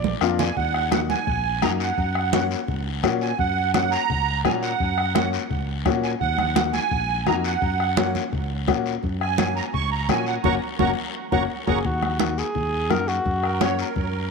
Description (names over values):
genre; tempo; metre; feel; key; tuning
latin, cumbia; 170 BPM; 4/4; straight; unclear; A4 = 442 Hz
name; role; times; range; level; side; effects
breathy alto saxophone; melody; 0.0-0.2, 11.7-13.8 s; Gb4 to D5; -28 LUFS; equal; none
fingered electric bass; bass; 0.0-14.3 s; Gb1 to Bb2; -27 LUFS; equal; none
congas; percussion; 0.0-14.1 s; none; -29 LUFS; right 11 dB; none
clear upright piano; accompaniment; 0.2-13.9 s; Bb3 to Gb4; -27 LUFS; left 11 dB; none
bombo; percussion; 0.2-14.1 s; none; -29 LUFS; left 6 dB; none
guiro; percussion; 0.2-14.3 s; none; -36 LUFS; left 13 dB; none
musette accordion; second line; 0.4-14.3 s; Bb4 to Db6; -26 LUFS; right 8 dB; tape echo
room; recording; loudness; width
moderate plate reverb, RT60 2.5 s; 1960s-style stereo with parts hard left and right; -20 LUFS; side -4 dB against mid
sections
0.6-11.8 A section; 11.8-14.3 B section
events
drum fill 0.0-0.6, 10.4-11.8; accordion solo 0.6-11.8; band accent 10.4-11.8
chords
0.0 Bb; 0.6 Ebm; 2.0 Gb; 6.2 Ebm; 7.6 Gb; 11.8 Ebm; 13.3 Gb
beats
0.21 | 0.57 0.92 1.27 1.62 | 1.98 2.33 2.68 3.04 | 3.39 3.74 4.09 4.45 | 4.80 5.15 5.50 5.86 | 6.21 6.56 6.92 7.27 | 7.62 7.97 8.32 8.68 | 9.03 9.38 9.73 10.09 | 10.44 10.79 11.14 11.50 | 11.85 12.20 12.55 12.90 | 13.26 13.61 13.96